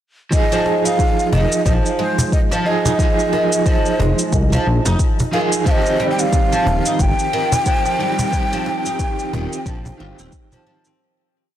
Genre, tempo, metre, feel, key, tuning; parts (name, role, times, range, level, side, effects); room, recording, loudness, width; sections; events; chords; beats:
organic downtempo; 90 BPM; 4/4; swing 59% on 16ths; F minor; A4 = 443 Hz
breathy ney; melody; 0.3-10.3 s; C5 to G5; -21 LUFS; equal; tape echo
electric guitar at the edge of break-up; accompaniment; 0.3-11.0 s; Eb3 to Ab4; -22 LUFS; right 3 dB; tremolo, sidechain pumping, ping-pong delay
electronic kick drum; drums; 0.3-10.5 s; -18 LUFS; left 1 dB
shaker; drums; 0.3-11.0 s; -26 LUFS; right 1 dB
oud; arpeggios; 0.5-11.0 s; Eb3 to F4; -24 LUFS; right 1 dB; ping-pong delay
cajon; percussion; 0.7-10.6 s; -23 LUFS; right 1 dB
smooth gliding synth bass; bass; 1.3-10.3 s; Eb1 to C2; -19 LUFS; left 1 dB; tube saturation
bowed-like drone; sustained chords; 6.8-11.0 s; Eb3 to Eb5; -31 LUFS; left 1 dB; built-in reverb, sidechain pumping
light reverb, studio ambience; blown-out, overdriven recording, overdrive; -15 LUFS; side -11 dB against mid
0.3-11.0 groove
fade-out 7.4-11.0
0.3 Fm7; 5.7 Eb6
| 0.33 1.00 1.66 2.33 | 3.00 3.66 4.33 5.00 | 5.66 6.33 7.00 7.66 | 8.33 9.00 9.66 10.33